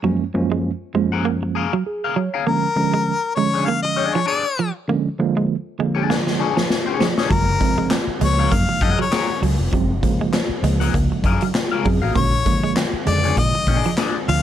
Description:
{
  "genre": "funk",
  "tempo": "99 BPM",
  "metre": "4/4",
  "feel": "swing 56% on 16ths",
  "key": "unclear",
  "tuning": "A4 = 440 Hz",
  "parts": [
    { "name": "semi-hollow electric guitar", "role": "riff", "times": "0.0-14.4 s", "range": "F3 to Bb3", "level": "-24 LUFS", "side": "right 7 dB", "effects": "none" },
    { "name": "mellow tine electric piano", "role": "stabs", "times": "0.0-13.8 s", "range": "Gb2 to Db5", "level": "-22 LUFS", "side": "right 3 dB", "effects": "medium stereo tremolo, tube saturation" },
    { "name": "electric guitar at the edge of break-up", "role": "accompaniment", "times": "1.1-14.2 s", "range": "D4 to Gb5", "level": "-25 LUFS", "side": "left 8 dB", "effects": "phaser, plate reverb" },
    { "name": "clear harmonica", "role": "melody", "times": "2.5-14.4 s", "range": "Bb4 to F5", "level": "-22 LUFS", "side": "left 4 dB", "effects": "plate reverb" },
    { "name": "raw garage drum kit", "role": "drums", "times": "6.1-14.4 s", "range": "handclaps, hi-hat, kick drum, snare drum", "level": "-21 LUFS", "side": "left 1 dB", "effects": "none" },
    { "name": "vintage muted fingered electric bass", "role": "bass", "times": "7.3-14.4 s", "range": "F1 to Bb2", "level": "-21 LUFS", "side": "equal", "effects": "none" }
  ],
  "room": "light reverb",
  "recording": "dark, warm production",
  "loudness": "-17 LUFS",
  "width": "side -10 dB against mid",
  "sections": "0.0-14.4 A section",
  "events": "tine electric piano fill 1.6-2.5; drum fill 6.1-7.3",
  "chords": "0.0 Gbmaj9; 2.5 Bb7#9; 7.3 Gbmaj9; 12.2 Bb7#9",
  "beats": "| 0.04 0.65 1.25 1.86 | 2.47 3.07 3.68 4.28 | 4.89 5.49 6.10 6.70 | 7.31 7.91 8.52 9.12 | 9.73 10.33 10.94 11.55 | 12.15 12.76 13.37 13.98"
}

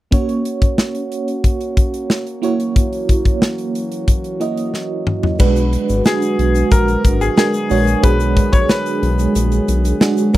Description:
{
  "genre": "1980s-style pop",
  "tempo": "91 BPM",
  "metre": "4/4",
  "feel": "straight",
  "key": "unclear",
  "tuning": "A4 = 441 Hz",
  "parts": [
    { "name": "FM electric piano with tremolo", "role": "accompaniment", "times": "0.1-10.4 s", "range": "F#3 to D#5", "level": "-19 LUFS", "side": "right 3 dB", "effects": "phaser" },
    { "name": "mellow brass ensemble", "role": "sustained chords", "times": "0.1-10.4 s", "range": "C#3 to G#4", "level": "-25 LUFS", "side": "right 1 dB", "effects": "none" },
    { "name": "modern studio drum kit", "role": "drums", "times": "0.1-10.4 s", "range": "crash cymbal, hi-hat, kick drum, snare drum, toms", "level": "-15 LUFS", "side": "equal", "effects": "none" },
    { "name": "round analog bass", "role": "bass", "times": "5.4-10.4 s", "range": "G#1 to B1", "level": "-17 LUFS", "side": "left 1 dB", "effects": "none" },
    { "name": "tube shaker", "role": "percussion", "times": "5.4-10.4 s", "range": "none", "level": "-36 LUFS", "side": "left 20 dB", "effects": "none" },
    { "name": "bright grand piano", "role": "melody", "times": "6.1-10.3 s", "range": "G#4 to C#5", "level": "-21 LUFS", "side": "left 3 dB", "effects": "slapback echo" }
  ],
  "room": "light reverb",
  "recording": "dry, close 1970s-style studio recording",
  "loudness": "-14 LUFS",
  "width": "side -15 dB against mid",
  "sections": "0.1-5.4 A section; 5.4-10.4 B section",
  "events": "drum fill 4.7-5.4",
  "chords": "0.1 F#; 2.4 F#7; 5.4 Bm6",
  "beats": "| 0.12 0.78 1.44 2.10 | 2.76 3.42 4.08 4.74 | 5.40 6.06 6.72 7.38 | 8.04 8.70 9.36 10.01"
}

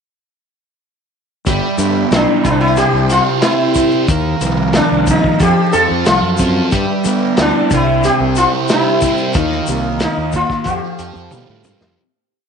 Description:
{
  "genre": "psychedelic rock",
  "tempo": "91 BPM",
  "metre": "4/4",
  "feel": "straight",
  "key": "unclear",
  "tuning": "A4 = 440 Hz",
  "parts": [
    { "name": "combo organ", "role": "sustained chords", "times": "1.5-12.0 s", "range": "F4 to C6", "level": "-24 LUFS", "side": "right 9 dB", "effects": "none" },
    { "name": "thick fuzz guitar", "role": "riff", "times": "1.5-12.0 s", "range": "C3 to G4", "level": "-17 LUFS", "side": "equal", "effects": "distortion, phaser" },
    { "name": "fuzz fingered electric bass", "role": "bass", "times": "1.5-12.0 s", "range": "G1 to G3", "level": "-20 LUFS", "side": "equal", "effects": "overdrive" },
    { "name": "vintage drum kit", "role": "drums", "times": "1.5-12.0 s", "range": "hi-hat, kick drum, snare drum, toms", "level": "-19 LUFS", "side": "equal", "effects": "none" },
    { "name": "tube shaker", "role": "percussion", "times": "1.5-11.9 s", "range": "none", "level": "-32 LUFS", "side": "left 13 dB", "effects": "none" },
    { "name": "sitar", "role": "melody", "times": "2.2-11.6 s", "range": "D4 to A4", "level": "-16 LUFS", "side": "left 1 dB", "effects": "slapback echo" }
  ],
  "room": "moderate echo chamber reverb, RT60 1.7 s, small room reverb",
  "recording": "1960s-style stereo with parts hard left and right, nothing above 10.3 kHz",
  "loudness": "-12 LUFS",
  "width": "side -6 dB against mid",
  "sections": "1.5-12.0 verse",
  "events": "fade-out 9.3-12.0; drum fill 11.3-12.0",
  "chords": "1.5 G6; 2.5 C; 4.1 Ebsus2; 5.4 F; 6.7 G6; 7.7 C; 9.3 Ebsus2; 10.7 Fadd9",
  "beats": "| 1.48 2.13 2.78 3.44 | 4.09 4.75 5.40 6.06 | 6.72 7.38 8.03 8.69 | 9.35 10.01 10.66 11.32"
}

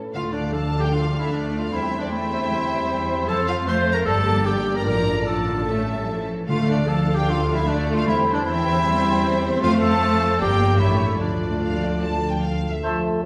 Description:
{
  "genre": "classical, dramatic, fast romantic movement for symphony orchestra",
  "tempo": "152 BPM",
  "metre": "4/4",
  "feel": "straight",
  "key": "D minor",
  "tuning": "A4 = 442 Hz",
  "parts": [
    { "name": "concert harp", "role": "arpeggios", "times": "0.0-13.3 s", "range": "F2 to D5", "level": "-30 LUFS", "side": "equal", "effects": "none" },
    { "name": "warm symphonic violin section", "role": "melody", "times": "0.1-12.8 s", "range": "C#5 to A5", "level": "-36 LUFS", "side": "equal", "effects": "none" },
    { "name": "clear clarinet", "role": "second line", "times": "0.1-13.0 s", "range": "D4 to C5", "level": "-27 LUFS", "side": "equal", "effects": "none" },
    { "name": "rich symphonic violin section", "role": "second line", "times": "0.1-12.4 s", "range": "D5 to C6", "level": "-32 LUFS", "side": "equal", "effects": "none" },
    { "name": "warm symphonic viola section", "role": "accompaniment", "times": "0.1-12.6 s", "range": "A3 to C5", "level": "-31 LUFS", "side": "equal", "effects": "none" },
    { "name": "warm studio double bass section", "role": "bass", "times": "0.1-12.6 s", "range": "G1 to F2", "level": "-30 LUFS", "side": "equal", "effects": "none" },
    { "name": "warm symphonic cello section", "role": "bass", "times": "0.1-12.6 s", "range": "D3 to Bb3", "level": "-29 LUFS", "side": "equal", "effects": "none" },
    { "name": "timpani", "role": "percussion", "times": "6.5-7.0 s", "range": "D3", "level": "-30 LUFS", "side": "equal", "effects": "none" },
    { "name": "small flute group", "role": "second line", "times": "12.8-13.0 s", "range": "A5", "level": "-35 LUFS", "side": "equal", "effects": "none" },
    { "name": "warm oboe", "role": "second line", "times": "12.8-13.0 s", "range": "C5", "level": "-34 LUFS", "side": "equal", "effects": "none" },
    { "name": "mellow bassoon", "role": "accompaniment", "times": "12.8-13.3 s", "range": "A3", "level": "-30 LUFS", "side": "equal", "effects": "none" },
    { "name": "dark French horn section", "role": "sustained chords", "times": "12.9-13.3 s", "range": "F3", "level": "-29 LUFS", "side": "equal", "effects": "none" }
  ],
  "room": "wet recital hall reverb, RT60 1.4 s",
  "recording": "heard from further back in the room",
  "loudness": "-21 LUFS",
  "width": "mono",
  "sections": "0.1-12.8 A section",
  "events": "none",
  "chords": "0.1 Dm; 1.7 C/E; 3.3 F; 4.1 Gm; 4.9 Dm/A; 5.7 A; 6.5 Dm; 8.1 C/E; 9.6 F; 10.4 Gm; 10.8 A7b9; 11.2 Dm",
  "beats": "| 0.14 0.54 0.93 1.33 | 1.73 2.12 2.51 2.90 | 3.29 3.69 4.08 4.47 | 4.87 5.27 5.68 6.08 | 6.49 6.89 7.29 7.69 | 8.08 8.47 8.86 9.25 | 9.63 10.02 10.41 10.80 | 11.21 11.62 12.03 12.44 | 12.84 13.23"
}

